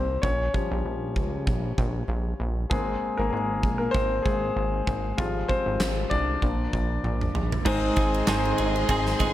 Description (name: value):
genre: piano-driven pop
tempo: 97 BPM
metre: 4/4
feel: swing 56% on 16ths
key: unclear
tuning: A4 = 443 Hz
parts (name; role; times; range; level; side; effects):
- clear concert grand piano; accompaniment; 0.0-9.3 s; Ab2 to D5; -27 LUFS; left 2 dB; plate reverb
- chorused synth bass; bass; 0.0-9.3 s; G1 to Db2; -29 LUFS; right 1 dB; none
- huge arena drum kit; drums; 0.2-9.3 s; crash cymbal, handclaps, kick drum, ride cymbal, snare drum, toms; -29 LUFS; right 1 dB; none
- warm studio string section; sustained chords; 7.7-9.3 s; Ab4 to C6; -32 LUFS; left 2 dB; none
- direct-recorded clean electric guitar; riff; 7.7-9.3 s; Ab2 to Ab4; -28 LUFS; right 5 dB; tremolo
room: light reverb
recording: none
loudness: -23 LUFS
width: side -13 dB against mid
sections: 0.0-7.7 A section; 7.7-9.3 B section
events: grand piano solo 0.0-7.7; drum fill 7.0-7.7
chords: 0.2 Bbm6; 2.7 Abadd9; 5.2 Fmadd9/Ab; 6.4 Bb; 7.7 Ab